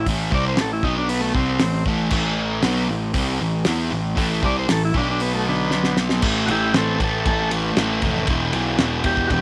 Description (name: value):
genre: garage rock duo or trio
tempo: 117 BPM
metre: 4/4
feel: straight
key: A minor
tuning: A4 = 439 Hz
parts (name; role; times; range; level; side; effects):
- combo organ; melody; 0.0-9.4 s; D3 to D5; -26 LUFS; equal; none
- fuzz guitar; riff; 0.0-9.4 s; E2 to E4; -25 LUFS; equal; distortion
- fuzz picked electric bass; bass; 0.0-9.4 s; E1 to E2; -28 LUFS; equal; overdrive, tube saturation
- cloth-damped thuddy drum kit; drums; 0.1-9.4 s; crash cymbal, hi-hat, kick drum, ride cymbal, snare drum; -26 LUFS; equal; none
room: studio reverb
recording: none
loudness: -21 LUFS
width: mono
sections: 0.0-6.2 A section; 6.2-9.4 B section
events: drum fill 5.7-6.2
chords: 0.0 Am; 0.8 B5; 1.4 Am; 5.0 B5; 6.2 A5; 8.3 Em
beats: | 0.06 0.58 1.09 1.61 | 2.12 2.64 3.15 3.67 | 4.18 4.69 5.21 5.72 | 6.23 6.75 7.26 7.77 | 8.28 8.79 9.30